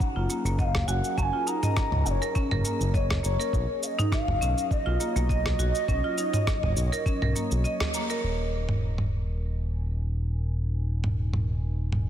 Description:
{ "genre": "organic downtempo", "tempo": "102 BPM", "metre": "4/4", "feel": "swing 54% on 16ths", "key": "Eb minor", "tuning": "A4 = 440 Hz", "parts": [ { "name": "warm analog pad", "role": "sustained chords", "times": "0.0-12.1 s", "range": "Gb3 to Ab5", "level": "-38 LUFS", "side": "equal", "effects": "chorus, sidechain pumping" }, { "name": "dusty soul sampler-style drum kit", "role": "drums", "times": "0.0-12.0 s", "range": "rim click, shaker, toms", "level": "-30 LUFS", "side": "equal", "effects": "none" }, { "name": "electronic kick drum", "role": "drums", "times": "0.0-7.2 s", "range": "none", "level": "-27 LUFS", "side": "equal", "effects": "none" }, { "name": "marimba with hard mallets", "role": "arpeggios", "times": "0.2-8.2 s", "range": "Bb3 to Eb5", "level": "-32 LUFS", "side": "right 1 dB", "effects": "tape echo" }, { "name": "smooth synth bass", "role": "bass", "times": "0.2-12.1 s", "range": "Eb1 to Db2", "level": "-27 LUFS", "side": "equal", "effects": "tube saturation, sidechain pumping" }, { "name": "mellow bass bansuri", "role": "melody", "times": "0.6-7.7 s", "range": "Db5 to Bb5", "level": "-31 LUFS", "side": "equal", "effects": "tape echo" }, { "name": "udu", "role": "percussion", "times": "0.8-7.9 s", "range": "none", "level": "-33 LUFS", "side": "right 1 dB", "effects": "none" } ], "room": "light reverb, small room ambience", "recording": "dense, heavily limited modern master", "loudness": "-24 LUFS", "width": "side -10 dB against mid", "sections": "0.0-8.2 A section; 8.2-12.1 B section", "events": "kick drops out 7.7-8.2; band accent 7.8", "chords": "0.0 Gb; 3.5 Bmaj9; 8.2 Ebm7" }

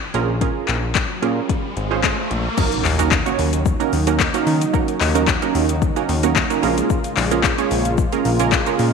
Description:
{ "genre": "dance-pop", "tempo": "111 BPM", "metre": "4/4", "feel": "straight", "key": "unclear", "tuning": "A4 = 440 Hz", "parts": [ { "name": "riser and impact", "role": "sound effects", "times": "0.1-4.7 s", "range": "none", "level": "-28 LUFS", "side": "equal", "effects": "none" }, { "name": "punchy chord stab", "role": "accompaniment", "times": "0.1-8.9 s", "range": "Bb3 to Db5", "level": "-21 LUFS", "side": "right 11 dB", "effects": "chorus, sidechain pumping" }, { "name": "fat analog bass", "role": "bass", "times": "0.1-8.9 s", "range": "Ab1 to Eb3", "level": "-21 LUFS", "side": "left 1 dB", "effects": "sidechain pumping" }, { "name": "deep house drum kit", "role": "drums", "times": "0.1-8.9 s", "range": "crash cymbal, handclaps, hi-hat, kick drum, shaker", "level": "-21 LUFS", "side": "left 5 dB", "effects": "overdrive" }, { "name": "warm analog pad", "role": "sustained chords", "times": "2.6-8.9 s", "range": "Db3 to F4", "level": "-24 LUFS", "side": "equal", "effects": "chorus, sidechain pumping" } ], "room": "moderate echo chamber reverb, RT60 2.1 s", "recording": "1960s-style stereo", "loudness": "-16 LUFS", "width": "side -5 dB against mid", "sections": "0.0-2.6 A section; 2.6-8.9 B section", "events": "riser 0.1-2.6; impact 2.6-4.7", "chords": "0.0 Bbm7; 2.6 Ebm7; 6.6 Bbm7" }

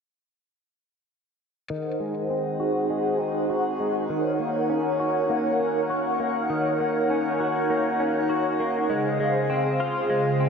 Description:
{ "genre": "dream pop", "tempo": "100 BPM", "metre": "4/4", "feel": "straight", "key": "Ab mixolydian", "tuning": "A4 = 440 Hz", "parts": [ { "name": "hollow soft pad", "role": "sustained chords", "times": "1.7-10.5 s", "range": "Db3 to Gb5", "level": "-24 LUFS", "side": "right 1 dB", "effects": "ensemble chorus, low-pass filter, shimmer reverb" }, { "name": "direct-recorded clean electric guitar", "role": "arpeggios", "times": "1.7-10.5 s", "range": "Eb3 to Gb4", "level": "-27 LUFS", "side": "left 2 dB", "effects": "analog chorus, low-pass filter, ping-pong delay, shimmer reverb" } ], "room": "wet lush hall reverb, RT60 1.9 s, digital ambience", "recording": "none", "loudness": "-22 LUFS", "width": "side -6 dB against mid", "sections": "1.7-10.5 A section", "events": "filter sweep 1.7-10.5", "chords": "1.7 Ab7; 4.1 Ebm7; 8.9 Dbmaj7" }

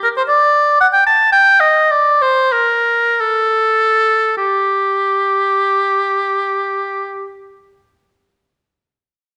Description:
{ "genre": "classical, baroque-style fantasia for unaccompanied oboe", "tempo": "46-77 BPM (dotted quarters)", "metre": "6/8", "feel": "rubato", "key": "G minor", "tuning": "A4 = 441 Hz", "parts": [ { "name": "clear oboe", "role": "solo", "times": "0.0-7.4 s", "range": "G4 to A5", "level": "-14 LUFS", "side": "equal", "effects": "none" } ], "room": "moderate recital hall reverb, RT60 1.3 s", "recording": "dark, warm production", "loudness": "-14 LUFS", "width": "mono", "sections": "0.0-4.4 A section; 4.4-8.8 B section", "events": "slowing down 0.0-4.4", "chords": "none" }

